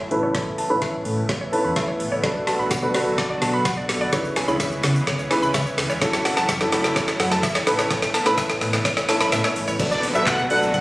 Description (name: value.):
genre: dance-pop.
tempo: 127 BPM.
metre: 4/4.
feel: straight.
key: unclear.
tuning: A4 = 440 Hz.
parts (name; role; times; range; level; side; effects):
lush unison pad; sustained chords; 0.0-10.8 s; C#3 to F#4; -28 LUFS; equal; chorus, sidechain pumping, low-pass filter.
mallet-like synth pluck; arpeggios; 0.0-9.7 s; C#5 to B5; -27 LUFS; equal; chorus, sidechain pumping, low-pass filter, tape echo.
sub bass with octave; bass; 0.0-10.7 s; E1 to C#3; -28 LUFS; equal; sidechain pumping.
warm baby grand piano; accompaniment; 0.1-10.8 s; C#4 to E5; -24 LUFS; equal; sidechain pumping, low-pass filter.
smooth R&B drum kit; drums; 0.1-10.8 s; crash cymbal, handclaps, hi-hat, kick drum, shaker, snare drum; -24 LUFS; equal; none.
tambourine; percussion; 2.7-9.4 s; none; -35 LUFS; right 1 dB; none.
downlifter; sound effects; 9.8-10.8 s; none; -28 LUFS; equal; none.
octave-doubled lead; melody; 9.9-10.8 s; D5 to F#5; -22 LUFS; equal; chorus, sidechain pumping.
room: light reverb.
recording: recorded on a phone in the room, studio reverb, compression.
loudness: -19 LUFS.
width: side -19 dB against mid.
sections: 0.0-9.8 A section; 9.8-10.8 B section.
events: build-up 0.0-9.8; drum fill 0.0-9.8; filter sweep 0.0-9.8; grand piano fill 1.5-2.2; drop 9.8-10.8.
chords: 0.1 Aadd9; 2.2 Bm7; 4.1 C#m7; 6.0 F#m7; 7.7 Aadd9; 9.8 Bm7.